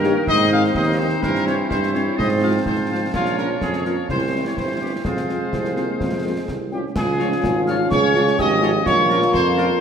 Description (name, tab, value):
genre	military-style march for wind band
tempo	126 BPM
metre	2/4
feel	straight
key	F minor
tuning	A4 = 445 Hz
part	mellow trumpet section	melody	0.0-9.8 s	F4 to F5	-24 LUFS	left 1 dB	none
part	bright woodwind section	second line	0.0-9.7 s	Eb4 to Db5	-27 LUFS	equal	none
part	dark French horn section	accompaniment	0.0-9.7 s	F3 to G4	-29 LUFS	left 6 dB	none
part	warm trombone section	sustained chords	0.0-9.8 s	Eb3 to Db4	-27 LUFS	right 4 dB	none
part	warm tuba	bass	0.0-9.7 s	G1 to Ab2	-22 LUFS	right 2 dB	none
part	concert snare drum, concert bass drum and clash cymbals	drums	0.0-9.7 s	none	-28 LUFS	left 1 dB	none
part	warm euphonium	second line	5.5-9.8 s	F3 to Ab4	-23 LUFS	right 1 dB	none
part	wooden piccolo	second line	6.7-9.8 s	G5 to F6	-24 LUFS	left 1 dB	none
room	wet scoring stage reverb, RT60 1.7 s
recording	none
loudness	-17 LUFS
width	side -7 dB against mid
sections	0.0-7.0 A section; 7.0-9.8 B section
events	none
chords	0.3 Ab; 1.2 C/G; 2.2 Fm/Ab; 3.1 Bbm; 4.1 C; 5.0 Fm; 7.0 Db; 8.9 Bbm